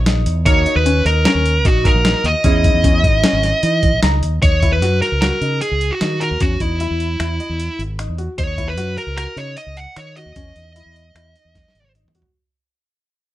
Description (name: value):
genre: progressive instrumental, band music in an uneven meter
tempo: 152 BPM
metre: 5/4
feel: straight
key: Eb phrygian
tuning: A4 = 440 Hz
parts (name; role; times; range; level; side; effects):
- archtop guitar, miked and amplified; accompaniment; 0.0-4.4 s; Bb3 to Bb5; -25 LUFS; right 2 dB; none
- fingered electric bass; bass; 0.0-12.2 s; Ab1 to Fb3; -19 LUFS; equal; none
- warm baby grand piano; arpeggios; 0.1-12.3 s; Db4 to Eb5; -25 LUFS; left 5 dB; none
- dusty soul sampler-style drum kit; drums; 0.1-12.3 s; finger snaps, hi-hat, kick drum, snare drum, toms; -18 LUFS; equal; none
- fuzz lead guitar; melody; 0.5-11.9 s; Fb4 to Gb5; -19 LUFS; right 1 dB; distortion, plate reverb
room: light reverb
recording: none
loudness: -14 LUFS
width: side -15 dB against mid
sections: 0.0-4.4 A section; 4.4-12.3 B section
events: hollow-body jazz guitar fill 3.8-4.4; fade-out 4.4-12.3; drum fill 11.6-12.3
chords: 0.5 Ebm; 2.4 Dbmadd9; 4.4 Ebm; 6.4 Dbmadd9/Fb (rootless); 8.4 Ebm; 10.4 Dbmadd9/Fb (rootless)